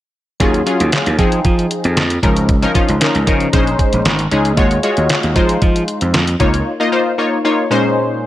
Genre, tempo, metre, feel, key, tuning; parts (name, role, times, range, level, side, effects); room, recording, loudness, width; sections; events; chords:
early-eighties boogie funk; 115 BPM; 4/4; straight; Eb dorian; A4 = 439 Hz
funky polysynth comp; accompaniment; 0.4-8.3 s; Bb2 to Eb5; -16 LUFS; left 1 dB; chorus
gritty slap bass; bass; 0.4-6.6 s; Ab1 to F3; -17 LUFS; equal; overdrive
detuned 8-bit digital drum machine; drums; 0.4-6.7 s; handclaps, hi-hat, kick drum, snare drum; -16 LUFS; equal
little or no reverb; -12 LUFS; side -14 dB against mid
0.4-8.3 A section
0.4 Ebm11; 1.2 Fm7; 2.2 Db69; 3.5 Bbm11; 4.6 Ebm11; 5.4 Fm7; 6.4 Db69; 7.7 Bbm11